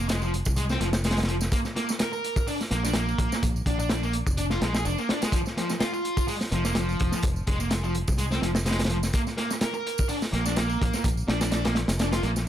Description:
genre	breakbeat, breaks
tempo	126 BPM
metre	4/4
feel	swing 55% on 16ths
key	unclear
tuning	A4 = 440 Hz
part	fuzz guitar	riff	0.0-12.3 s	F3 to Bb4	-29 LUFS	right 1 dB	distortion, dub echo
part	fingered electric bass	bass	0.0-12.5 s	F1 to C2	-28 LUFS	equal	none
part	crunchy breakbeat drum kit	drums	0.1-12.5 s	hi-hat, kick drum, snare drum	-27 LUFS	equal	none
part	tambourine	drums	0.1-12.4 s	none	-38 LUFS	right 4 dB	overdrive
room	small room ambience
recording	none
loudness	-24 LUFS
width	side -11 dB against mid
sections	0.0-12.5 A section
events	none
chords	0.0 Fm; 1.5 Bb; 5.3 Fm; 9.1 Bb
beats	0.09 0.57 1.04 | 1.52 2.00 2.47 2.95 | 3.42 3.90 4.38 4.85 | 5.33 5.80 6.28 6.76 | 7.23 7.71 8.19 8.66 | 9.14 9.62 10.09 10.57 | 11.04 11.52 12.00 12.47

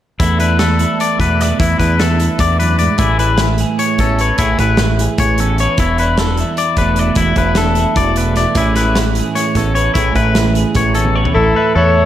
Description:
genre	math rock and midwest emo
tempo	301 BPM (eighths)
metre	7/8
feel	straight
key	A major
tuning	A4 = 440 Hz
part	twelve-string electric guitar	accompaniment	0.2-12.1 s	E2 to B4	-18 LUFS	right 5 dB	spring reverb
part	twangy electric guitar	arpeggios	0.2-12.1 s	E4 to D5	-17 LUFS	left 4 dB	slapback echo
part	growling fingered electric bass	bass	0.2-12.1 s	E1 to E2	-16 LUFS	equal	overdrive
part	loose indie drum kit	drums	0.2-11.4 s	hi-hat, kick drum, snare drum, toms	-19 LUFS	equal	none
part	mellow trumpet	melody	11.3-12.1 s	A4 to C#5	-13 LUFS	left 2 dB	slapback echo
room	moderate lush hall reverb, RT60 1.7 s, small room ambience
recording	big arena sound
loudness	-12 LUFS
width	side -11 dB against mid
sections	0.2-11.4 A section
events	drum fill 11.1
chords	0.2 E7sus4; 3.0 Amaj9; 5.8 E7sus4; 8.6 Amaj9; 11.4 Aadd9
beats	| 0.21 0.41 0.61 0.81 1.01 1.21 1.41 | 1.61 1.81 2.00 2.20 2.40 2.60 2.80 | 3.00 3.20 3.40 3.60 3.80 4.00 4.19 | 4.39 4.59 4.79 4.99 5.19 5.39 5.59 | 5.79 5.99 6.18 6.38 6.58 6.78 6.98 | 7.18 7.38 7.58 7.78 7.98 8.18 8.38 | 8.58 8.78 8.97 9.17 9.37 9.57 9.77 | 9.97 10.17 10.37 10.57 10.77 10.97 11.17 | 11.37 11.57 11.77 11.96

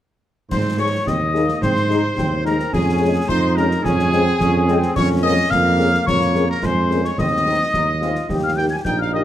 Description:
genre	military-style march for wind band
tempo	108 BPM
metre	2/4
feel	straight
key	Ab major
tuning	A4 = 440 Hz
part	bright trumpet section	melody	0.5-9.2 s	Ab4 to Ab5	-22 LUFS	left 1 dB	none
part	wooden piccolo	second line	0.5-9.2 s	Ab5 to Ab6	-25 LUFS	left 3 dB	none
part	warm tuba	bass	0.5-9.2 s	Bb1 to Ab2	-20 LUFS	right 2 dB	none
part	concert snare drum, clash cymbals and concert bass drum	drums	0.5-9.1 s	none	-26 LUFS	left 1 dB	none
part	mellow French horn section	accompaniment	0.8-9.2 s	Ab3 to Ab4	-25 LUFS	left 4 dB	none
part	warm trombone section	sustained chords	1.1-9.2 s	Ab3 to G4	-25 LUFS	equal	none
room	moderate recital hall reverb, RT60 1.4 s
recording	none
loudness	-16 LUFS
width	side -12 dB against mid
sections	0.5-9.2 A section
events	none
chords	0.5 Ab; 2.7 Db/F; 5.0 Bbm7/F; 7.2 Ab/Eb; 8.3 Eb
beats	| 0.51 1.06 | 1.62 2.18 | 2.73 3.29 | 3.84 4.40 | 4.96 5.51 | 6.07 6.62 | 7.18 7.74 | 8.29 8.85

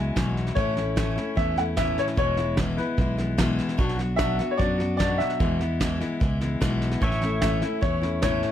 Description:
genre	honky-tonk and classic country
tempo	149 BPM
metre	4/4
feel	straight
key	A major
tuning	A4 = 440 Hz
part	bright upright piano	second line	0.0-8.5 s	B4 to G#5	-28 LUFS	left 2 dB	none
part	picked steel-string acoustic guitar	accompaniment	0.0-8.5 s	E2 to F#4	-27 LUFS	left 2 dB	none
part	fingered electric bass	bass	0.0-8.4 s	E1 to F#2	-28 LUFS	right 1 dB	none
part	soft brush drum kit	drums	0.2-8.5 s	hi-hat, kick drum, snare drum	-28 LUFS	right 1 dB	none
part	pedal steel guitar	sustained chords	7.0-8.5 s	C#5 to E5	-33 LUFS	right 2 dB	none
room	little or no reverb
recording	none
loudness	-22 LUFS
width	side -10 dB against mid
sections	0.0-8.5 A section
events	upright piano solo 0.0-8.5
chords	0.0 Eadd9; 0.6 A; 2.2 E; 3.8 Bm; 5.4 E; 7.0 A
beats	0.16 | 0.56 0.96 1.37 1.77 | 2.17 2.58 2.98 3.39 | 3.79 4.19 4.60 5.00 | 5.40 5.81 6.21 6.61 | 7.02 7.42 7.83 8.23

